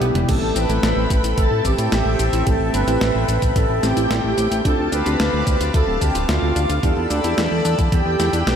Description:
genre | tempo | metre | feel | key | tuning
synthwave | 110 BPM | 4/4 | straight | A minor | A4 = 442 Hz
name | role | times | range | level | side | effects
soft supersaw | melody | 0.0-8.6 s | F4 to B4 | -23 LUFS | right 1 dB | diffuse ambient delay
chorused pulse-width pad | sustained chords | 0.0-8.6 s | G3 to E6 | -26 LUFS | equal | sidechain pumping
analog pluck | arpeggios | 0.0-8.6 s | G3 to G4 | -31 LUFS | left 2 dB | none
fat analog bass | bass | 0.0-8.6 s | D1 to A2 | -21 LUFS | equal | none
clean 12-bit digital drum machine | drums | 0.0-8.6 s | crash cymbal, hi-hat, shaker, snare drum, toms | -26 LUFS | equal | none
string machine, violins | second line | 0.3-8.6 s | F5 to B5 | -29 LUFS | left 1 dB | ensemble chorus, ping-pong delay
mellow FM electric piano | stabs | 0.3-7.5 s | A3 to A4 | -28 LUFS | right 2 dB | chorus, tremolo, ping-pong delay
electronic kick drum | drums | 0.3-8.0 s | none | -20 LUFS | equal | none
room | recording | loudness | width
moderate cathedral reverb, RT60 5.1 s | dreamy mix soaked in reverb | -16 LUFS | side -8 dB against mid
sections
0.3-8.6 A section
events
drum fill 0.0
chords
0.3 Am7; 4.7 Dm7; 6.8 Em7

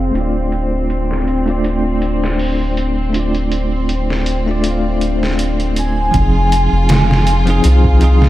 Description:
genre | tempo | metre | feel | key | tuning
trip hop | 80 BPM | 4/4 | swing 54% on 16ths | unclear | A4 = 440 Hz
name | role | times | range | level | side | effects
bell-like tine electric piano | accompaniment | 0.0-8.3 s | F3 to G5 | -19 LUFS | left 1 dB | fast stereo tremolo, tape echo
clear studio violin section | sustained chords | 0.0-8.3 s | C4 to F4 | -22 LUFS | left 1 dB | low-pass filter
soft dub sub bass | bass | 0.0-8.3 s | D1 to C2 | -16 LUFS | equal | tube saturation
trip hop sampler-style drum kit | drums | 0.2-8.3 s | hi-hat, kick drum, snare drum | -20 LUFS | equal | high-pass filter on hats, small room reverb, high-pass filter on snare, high-pass filter on kick
pure breathy sine lead | melody | 5.8-8.3 s | F5 to Ab5 | -21 LUFS | right 1 dB | phaser, analog chorus, tape echo
room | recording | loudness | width
light reverb, digital ambience | low-pass filter | -13 LUFS | side -15 dB against mid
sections
0.0-6.1 A section; 6.1-8.3 B section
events
filter sweep on violin section 0.0-6.1; filter sweep 0.0-6.1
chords
0.1 Dm; 6.1 Fm7

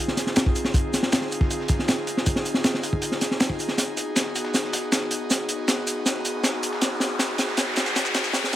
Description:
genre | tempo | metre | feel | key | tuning
drum and bass, jungle | 158 BPM | 4/4 | straight | unclear | A4 = 440 Hz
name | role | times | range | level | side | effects
airy breathy pad | sustained chords | 0.0-8.6 s | Cb4 to Ab4 | -28 LUFS | equal | chorus, vintage 12-bit sampler grit
crunchy breakbeat drum kit | drums | 0.1-8.6 s | hi-hat, kick drum, snare drum | -23 LUFS | equal | none
electronic shaker and snare drum | drums | 0.2-8.6 s | none | -31 LUFS | right 1 dB | overdrive, high-pass filter on perc, high-pass filter on snare, high-pass filter on room
riser | sound effects | 5.2-8.6 s | none | -30 LUFS | equal | none
room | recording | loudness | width
light reverb, small room ambience | high-pass filter | -21 LUFS | side -12 dB against mid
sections
0.0-8.6 A section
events
build-up 0.0-8.6; filter sweep 0.0-8.6; drum fill 3.8-8.6; riser 5.2-8.6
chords
0.0 Fm7; 3.8 Abm7

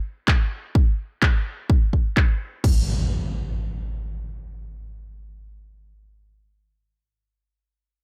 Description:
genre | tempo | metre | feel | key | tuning
filtered disco house | 127 BPM | 4/4 | swing 55% on 16ths | none | none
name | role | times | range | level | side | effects
electronic kick drum | drums | 0.3-2.7 s | none | -21 LUFS | equal | none
house drum kit | drums | 0.3-2.7 s | crash cymbal, handclaps | -29 LUFS | equal | sidechain pumping on hats, low-pass filter on hats, sidechain pumping on perc, low-pass filter on perc, low-pass filter on snare, sidechain pumping on cymbals, low-pass filter on cymbals
impact | sound effects | 2.6-5.6 s | none | -30 LUFS | equal | none
room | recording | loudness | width
little or no reverb | none | -23 LUFS | mono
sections
0.0-2.6 A section; 2.6-6.4 B section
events
none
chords
none

